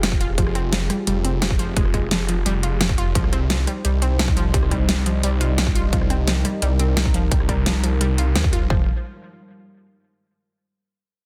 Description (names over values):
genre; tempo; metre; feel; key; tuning
dark technical drum and bass; 173 BPM; 4/4; straight; F minor; A4 = 440 Hz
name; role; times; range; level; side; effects
dark analog pad; sustained chords; 0.0-8.9 s; G3 to C5; -32 LUFS; equal; chorus, sidechain pumping
unison pluck; arpeggios; 0.0-8.9 s; F3 to F4; -30 LUFS; equal; sidechain pumping, tape echo
snarling distorted saw bass; bass; 0.0-8.9 s; Eb1 to Eb2; -24 LUFS; equal; distortion
dubstep drum kit; drums; 0.0-8.6 s; hi-hat, rim click, snare drum; -26 LUFS; equal; small room ambience
electronic kick drum; drums; 0.1-8.8 s; none; -24 LUFS; equal; small room ambience
room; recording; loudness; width
digital ambience; dense, heavily limited modern master; -20 LUFS; mono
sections
0.0-8.7 A section; 8.7-10.1 B section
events
drop 0.0-8.7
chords
0.0 Fmadd9; 3.2 Cm; 8.7 Fmadd9